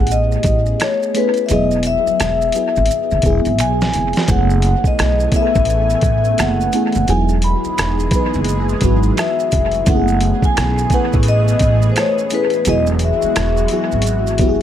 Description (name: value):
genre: R&B, neo-soul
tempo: 86 BPM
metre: 4/4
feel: swing 62% on 16ths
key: F# dorian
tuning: A4 = 439 Hz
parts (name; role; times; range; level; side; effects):
- vibraphone with medium hard mallets; melody; 0.0-14.6 s; B4 to B5; -19 LUFS; left 3 dB; dub echo
- FM electric piano with soft pad layer; accompaniment; 0.0-14.6 s; F#3 to B4; -20 LUFS; equal; chorus, phaser, dub echo
- upright bass; bass; 0.0-14.6 s; E1 to B1; -18 LUFS; equal; none
- dusty soul sampler-style drum kit; drums; 0.1-14.6 s; hi-hat, kick drum, rim click, snare drum; -19 LUFS; equal; dub echo
- maracas and finger snaps; percussion; 0.1-14.6 s; none; -31 LUFS; right 9 dB; dub echo
- lush unison pad; sustained chords; 4.8-14.6 s; E3 to G#5; -25 LUFS; equal; chorus, phaser
room: light reverb, studio ambience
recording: echo-heavy mix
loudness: -13 LUFS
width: side -10 dB against mid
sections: 0.0-14.6 A section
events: drum fill 3.6-4.3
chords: 0.0 F#m11 (rootless); 1.5 E; 4.3 F#m11; 7.1 Emaj7; 9.9 F#m11; 12.7 Eadd9